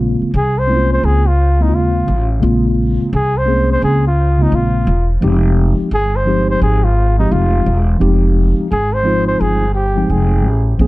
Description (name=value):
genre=hip hop, jazz-hop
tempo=86 BPM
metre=4/4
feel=swing 64% on 16ths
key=unclear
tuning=A4 = 440 Hz
part: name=mellow tine electric piano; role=accompaniment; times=0.0-10.9 s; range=Db3 to G5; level=-17 LUFS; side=left 1 dB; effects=medium stereo tremolo
part: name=upright bass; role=bass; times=0.0-10.9 s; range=E1 to Eb2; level=-14 LUFS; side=equal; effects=none
part: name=breathy flugelhorn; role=melody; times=0.4-10.7 s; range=Eb4 to C5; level=-19 LUFS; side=equal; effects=analog delay
room=light reverb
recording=nothing above 10.7 kHz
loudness=-12 LUFS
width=side -19 dB against mid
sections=0.0-10.8 A section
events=none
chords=0.0 Bbm9; 5.2 Fm9